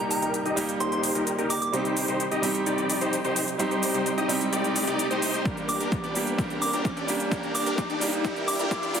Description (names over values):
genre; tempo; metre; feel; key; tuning
EDM, festival progressive house; 129 BPM; 4/4; straight; G minor; A4 = 441 Hz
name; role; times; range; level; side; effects
soft synth bell; melody; 0.0-1.7, 5.7-8.7 s; Bb5 to D6; -32 LUFS; right 1 dB; chorus, tape echo
bright concert grand piano; accompaniment; 0.0-9.0 s; G3 to G4; -29 LUFS; right 2 dB; sidechain pumping
big supersaw lead; riff; 0.0-9.0 s; D4 to Eb5; -28 LUFS; left 1 dB; sidechain pumping, low-pass filter, tape echo
fat analog bass; bass; 0.0-9.0 s; Eb1 to C2; -38 LUFS; left 1 dB; sidechain pumping, high-pass filter
riser; sound effects; 0.3-9.0 s; none; -35 LUFS; left 2 dB; none
electronic hi-hat and shaker; drums; 0.1-9.0 s; none; -31 LUFS; equal; overdrive
electronic kick drum; drums; 5.5-8.8 s; none; -31 LUFS; equal; overdrive
room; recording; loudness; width
wet lush hall reverb, RT60 2.0 s; dense, heavily limited modern master, high-pass filter; -24 LUFS; side -7 dB against mid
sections
0.0-9.0 A section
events
build-up 0.0-9.0; filter sweep on supersaw synth 0.0-9.0; riser 0.3-9.0; drum fill 5.5-9.0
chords
0.0 Eb; 1.7 Cm; 5.5 Gm